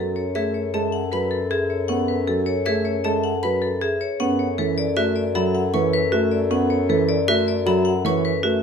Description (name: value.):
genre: classical, minimalist pattern music.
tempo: 156 BPM.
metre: 6/4.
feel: straight.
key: F# minor.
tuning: A4 = 440 Hz.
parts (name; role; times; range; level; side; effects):
vibraphone with hard mallets; melody; 0.0-8.6 s; A4 to F#5; -27 LUFS; left 8 dB; none.
mellow hollow alto flute; second line; 0.0-8.6 s; A4; -30 LUFS; left 5 dB; none.
dark baby grand piano; accompaniment; 0.0-8.6 s; E3 to B3; -24 LUFS; right 2 dB; none.
marimba with medium hard mallets; arpeggios; 0.0-8.6 s; C#4 to B4; -24 LUFS; right 4 dB; none.
warm bass clarinet; bass; 0.0-8.6 s; F#2; -26 LUFS; left 3 dB; none.
xylophone with rubber mallets; arpeggios; 0.4-8.3 s; E5 to C#6; -30 LUFS; left 3 dB; none.
room: light reverb.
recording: minimal, uncompressed stereo recording.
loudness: -19 LUFS.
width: side -6 dB against mid.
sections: 0.0-8.6 A section.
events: none.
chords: 0.0 F#m9; 4.2 Bm9/F#.